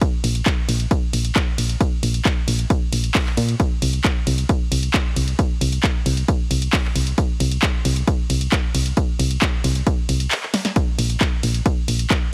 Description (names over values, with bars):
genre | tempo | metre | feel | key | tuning
uplifting trance | 134 BPM | 4/4 | straight | unclear | A4 = 440 Hz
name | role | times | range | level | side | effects
electronic kick drum | drums | 0.0-12.2 s | none | -22 LUFS | equal | none
punchy analog drum machine | drums | 0.0-12.2 s | handclaps, hi-hat, ride cymbal, snare drum | -27 LUFS | equal | sidechain pumping on hats, sidechain pumping on cymbals
solid FM bass | bass | 0.2-12.1 s | Bb1 to Bb2 | -22 LUFS | equal | sidechain pumping
room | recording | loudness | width
digital ambience | heavily compressed radio sound | -20 LUFS | mono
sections
0.0-12.3 A section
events
kick drops out 10.3-10.8; drum fill 10.5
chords
none